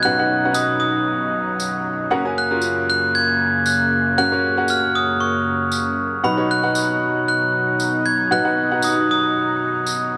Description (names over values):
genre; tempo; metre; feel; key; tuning
piano-driven pop; 116 BPM; 4/4; swing 56% on 16ths; unclear; A4 = 441 Hz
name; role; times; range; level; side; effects
glockenspiel with hard plastic mallets; melody; 0.0-9.6 s; B5 to Ab6; -21 LUFS; equal; none
clear upright piano; accompaniment; 0.0-10.2 s; B1 to Ab5; -25 LUFS; equal; none
chorused pulse-width pad; sustained chords; 0.0-10.2 s; Gb2 to D#4; -28 LUFS; equal; none
tambourine; percussion; 0.5-10.0 s; none; -30 LUFS; equal; none
room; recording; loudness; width
moderate echo chamber reverb, RT60 1.3 s, studio ambience; none; -19 LUFS; mono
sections
0.0-10.2 A section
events
none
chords
0.0 B; 2.1 Gb; 6.2 B